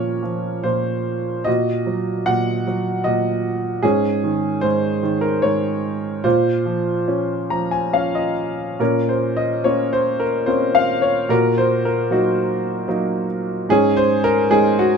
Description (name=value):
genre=classical, lyrical solo piano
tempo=69-78 BPM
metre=3/4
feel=rubato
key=Bb minor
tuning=A4 = 440 Hz
part: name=warm grand piano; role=solo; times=0.0-15.0 s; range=Ab2 to Bb5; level=-17 LUFS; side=equal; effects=none
room=light reverb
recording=none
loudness=-17 LUFS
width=side -6 dB against mid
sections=0.0-8.8 A section; 8.8-15.0 B section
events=grand piano fill 7.1-8.8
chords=0.0 Bbm; 1.5 Ebm/Bb; 3.8 Absus4; 6.2 Bbmadd9; 11.3 Ebm/Bb; 13.7 Absus4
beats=0.65 | 1.47 2.27 3.05 | 3.83 4.63 5.44 | 6.25 7.08 7.93 | 8.80 9.65 10.47 | 11.30 12.11 12.90 | 13.70 14.51